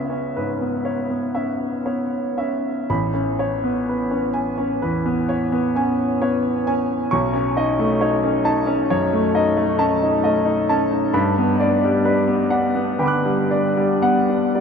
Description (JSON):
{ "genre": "classical, impressionist solo piano", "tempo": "38-45 BPM (dotted quarters)", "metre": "9/8", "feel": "rubato", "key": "unclear", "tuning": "A4 = 440 Hz", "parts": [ { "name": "clear concert grand piano", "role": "solo", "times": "0.0-14.6 s", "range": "A1 to F#6", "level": "-18 LUFS", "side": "equal", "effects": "none" } ], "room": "wet huge ambient reverb, RT60 7.2 s", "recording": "in a vast, echoing space", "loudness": "-18 LUFS", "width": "side -6 dB against mid", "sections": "0.0-14.6 A section", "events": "none", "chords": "0.0 C#m7; 2.9 Amaj9; 7.1 B9; 11.1 Gmaj7" }